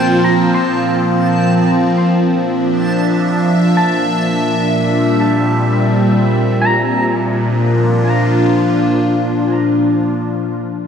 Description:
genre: ambient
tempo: free time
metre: none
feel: none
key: Bb lydian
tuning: A4 = 440 Hz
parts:
  - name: evolving wavetable pad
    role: sustained chords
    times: 0.0-10.2 s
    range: Bb2 to E5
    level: -13 LUFS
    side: equal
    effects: phaser, built-in reverb
  - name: twangy electric guitar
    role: arpeggios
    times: 0.0-9.8 s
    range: G5 to C6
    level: -22 LUFS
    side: left 1 dB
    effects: wide subtle chorus, tape echo
  - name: overtone-sweeping drone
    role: drone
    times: 0.0-9.8 s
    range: Bb3 to F4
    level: -22 LUFS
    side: right 2 dB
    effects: chorus, built-in reverb, phaser
  - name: backwards swelling texture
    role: texture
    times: 0.0-6.6 s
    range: A5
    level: -28 LUFS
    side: equal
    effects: built-in reverb
room: wet cathedral reverb, RT60 5.3 s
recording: in a vast, echoing space, cassette tape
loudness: -12 LUFS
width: side -7 dB against mid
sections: 0.0-6.6 A section; 6.6-9.5 B section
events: none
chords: 0.0 Bbsus2; 0.9 Dmadd9; 3.7 C7/Bb; 6.6 Bb

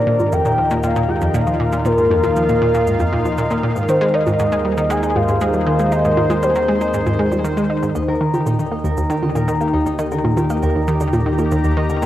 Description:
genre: ambient, sequencer-driven space music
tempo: 118 BPM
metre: 4/4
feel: straight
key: Eb major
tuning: A4 = 437 Hz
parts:
  - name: soft octave-layered synth lead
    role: melody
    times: 0.0-7.4 s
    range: Bb4 to Ab5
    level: -20 LUFS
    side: left 2 dB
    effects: chorus, phaser, cassette tape, ping-pong delay
  - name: sweeping resonant pad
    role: sustained chords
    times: 0.0-12.1 s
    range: Eb3 to Bb5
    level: -21 LUFS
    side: right 1 dB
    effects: chorus, cassette tape
  - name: analog drone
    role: bass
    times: 0.5-12.1 s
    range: Eb2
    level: -25 LUFS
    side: equal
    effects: chorus
  - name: analog pluck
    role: riff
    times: 0.1-12.1 s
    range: Eb2 to Eb4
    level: -19 LUFS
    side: equal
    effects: chorus, cassette tape, ping-pong delay
  - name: bongos and cabasa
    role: percussion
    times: 0.2-12.1 s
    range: none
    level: -27 LUFS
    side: right 1 dB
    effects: cassette tape, ping-pong delay
  - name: Celtic harp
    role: arpeggios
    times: 8.0-12.1 s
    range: Eb4 to Eb5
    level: -26 LUFS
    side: moving between left 5 dB and right 3 dB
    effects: auto-pan, cassette tape, ping-pong delay
room: wet spring reverb, RT60 1.3 s, digital ambience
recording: home recording on cassette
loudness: -15 LUFS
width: side -13 dB against mid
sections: 0.0-12.1 A section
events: none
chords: 0.0 Bb/Eb; 3.9 Abadd9/Eb; 8.0 Eb

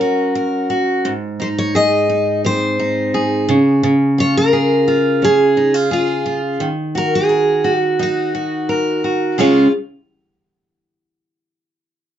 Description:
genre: pop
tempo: 86 BPM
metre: 4/4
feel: straight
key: Db major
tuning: A4 = 439 Hz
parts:
  - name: picked steel-string acoustic guitar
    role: melody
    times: 0.0-9.7 s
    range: F4 to Eb5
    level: -16 LUFS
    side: equal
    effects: none
  - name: picked steel-string acoustic guitar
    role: accompaniment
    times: 0.0-9.7 s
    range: Ab2 to Bb4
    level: -16 LUFS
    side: right 1 dB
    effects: none
room: wet small room ambience, RT60 0.5 s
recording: nothing above 7.8 kHz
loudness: -14 LUFS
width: side -10 dB against mid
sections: 0.0-9.4 A section; 9.4-12.2 B section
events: none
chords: 0.0 Gb; 1.0 Ab; 3.5 Db; 6.6 Ebm; 9.4 Db

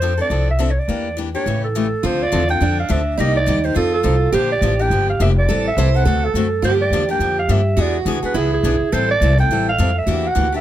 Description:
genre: acoustic string swing (jazz manouche)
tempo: 209 BPM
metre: 4/4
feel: swing 59% on 8ths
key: D minor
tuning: A4 = 440 Hz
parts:
  - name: growling clarinet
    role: melody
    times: 0.0-10.6 s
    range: G#4 to G5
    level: -20 LUFS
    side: right 2 dB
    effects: none
  - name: picked steel-string acoustic guitar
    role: accompaniment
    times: 0.0-10.6 s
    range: C3 to A4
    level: -23 LUFS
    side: left 5 dB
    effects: none
  - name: upright bass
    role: bass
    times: 0.0-10.6 s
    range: F1 to G2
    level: -19 LUFS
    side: equal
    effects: none
  - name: picked steel-string acoustic guitar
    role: second line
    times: 2.0-10.6 s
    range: D4 to C5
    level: -22 LUFS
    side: right 4 dB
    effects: none
room: light reverb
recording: none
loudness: -15 LUFS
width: side -12 dB against mid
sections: 0.0-2.0 A section; 2.0-10.6 B section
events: none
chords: 0.0 F6; 0.9 Em7b5; 1.5 A7; 2.0 Dm7; 3.2 Cm7; 3.8 F7; 4.3 Bb6; 5.5 Am7; 6.1 D7; 6.6 Gm7; 7.8 E7; 8.9 Am7; 10.1 Em7b5

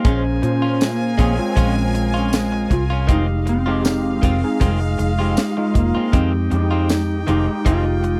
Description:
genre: straight-eighth soul blues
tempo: 79 BPM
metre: 4/4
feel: swing 54% on 16ths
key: F minor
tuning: A4 = 441 Hz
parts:
  - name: electric slide guitar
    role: melody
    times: 0.0-8.2 s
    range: Ab3 to F4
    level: -24 LUFS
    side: equal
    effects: none
  - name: overdriven tine electric piano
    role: accompaniment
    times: 0.0-8.2 s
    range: Ab3 to C5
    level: -26 LUFS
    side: equal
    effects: ensemble chorus
  - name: direct-recorded clean electric guitar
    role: stabs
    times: 0.0-8.1 s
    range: Eb3 to F4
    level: -28 LUFS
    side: equal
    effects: none
  - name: tight funk drum kit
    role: drums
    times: 0.0-8.2 s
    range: hi-hat, kick drum, snare drum, tambourine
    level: -20 LUFS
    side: equal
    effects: none
  - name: brilliant horn section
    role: sustained chords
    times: 0.1-8.2 s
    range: F4 to Ab5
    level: -32 LUFS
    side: equal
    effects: none
  - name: vintage muted fingered electric bass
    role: bass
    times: 0.1-8.2 s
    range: F1 to Bb2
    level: -23 LUFS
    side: equal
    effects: none
room: little or no reverb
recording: dry, close 1970s-style studio recording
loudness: -19 LUFS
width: mono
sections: 0.0-8.2 A section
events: none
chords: 0.0 Bbm7; 3.1 Fm7

